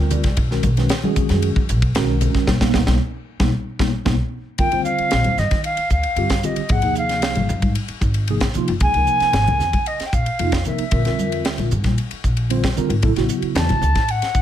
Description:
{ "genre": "electric jazz fusion", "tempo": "114 BPM", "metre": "4/4", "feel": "straight", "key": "unclear", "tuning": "A4 = 440 Hz", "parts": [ { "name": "mellow tine electric piano", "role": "accompaniment", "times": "0.0-13.8 s", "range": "C3 to D5", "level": "-23 LUFS", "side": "right 1 dB", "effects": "medium stereo tremolo, phaser" }, { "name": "upright bass", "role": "bass", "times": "0.0-14.4 s", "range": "Gb1 to Eb3", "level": "-21 LUFS", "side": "equal", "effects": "none" }, { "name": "crisp fusion drum kit", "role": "drums", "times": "0.1-14.4 s", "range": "hi-hat, kick drum, ride cymbal, snare drum", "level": "-22 LUFS", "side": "equal", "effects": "none" }, { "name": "congas", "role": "percussion", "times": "0.1-14.0 s", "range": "none", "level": "-26 LUFS", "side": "left 3 dB", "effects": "none" }, { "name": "silver concert flute", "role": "melody", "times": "4.6-14.4 s", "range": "Eb5 to A5", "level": "-21 LUFS", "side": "equal", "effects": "slapback echo, plate reverb" } ], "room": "light reverb", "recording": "none", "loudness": "-17 LUFS", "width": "side -11 dB against mid", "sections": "0.0-4.6 A section; 4.6-14.4 B section", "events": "tine electric piano fill 0.0-0.4, 3.5-4.6; band accent 2.5-4.6; drum fill 3.5-4.6", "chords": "0.4 Bmaj9; 4.6 Ebmaj9; 6.7 Ab69; 8.8 Db69; 10.9 Bb(#11); 13.0 A69" }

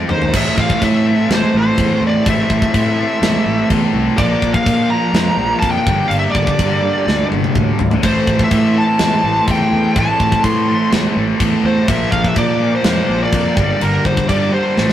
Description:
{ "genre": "heavy metal", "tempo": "125 BPM", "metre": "4/4", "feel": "straight", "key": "A phrygian", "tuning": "A4 = 440 Hz", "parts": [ { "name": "distorted electric guitar", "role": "riff", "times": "0.0-14.9 s", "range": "G2 to D#4", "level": "-19 LUFS", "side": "right 2 dB", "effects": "distortion" }, { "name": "heavy high-gain guitar", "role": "riff", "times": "0.0-14.9 s", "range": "G2 to D#4", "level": "-22 LUFS", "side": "left 5 dB", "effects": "distortion" }, { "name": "fuzz fingered electric bass", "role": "bass", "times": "0.0-14.9 s", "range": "G1 to Bb2", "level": "-20 LUFS", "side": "equal", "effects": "overdrive" }, { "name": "high-gain lead guitar", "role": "melody", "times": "0.1-14.9 s", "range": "Bb4 to C6", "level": "-19 LUFS", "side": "right 1 dB", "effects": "distortion" }, { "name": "tight metal drum kit", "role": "drums", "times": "0.1-14.9 s", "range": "crash cymbal, kick drum, snare drum, toms", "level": "-18 LUFS", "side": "equal", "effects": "none" }, { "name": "muted studio string section", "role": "sustained chords", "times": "0.3-14.9 s", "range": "E3 to D5", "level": "-27 LUFS", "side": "left 1 dB", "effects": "none" } ], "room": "moderate stone room reverb, RT60 1.3 s", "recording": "rough rehearsal-room recording", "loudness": "-12 LUFS", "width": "side -11 dB against mid", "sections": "0.3-14.9 A section", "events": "drum fill 0.0-0.3, 7.1-8.0, 14.8", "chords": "0.3 Am; 4.2 Bb; 5.9 Gm; 8.0 Am; 11.9 Bb; 13.6 Gm" }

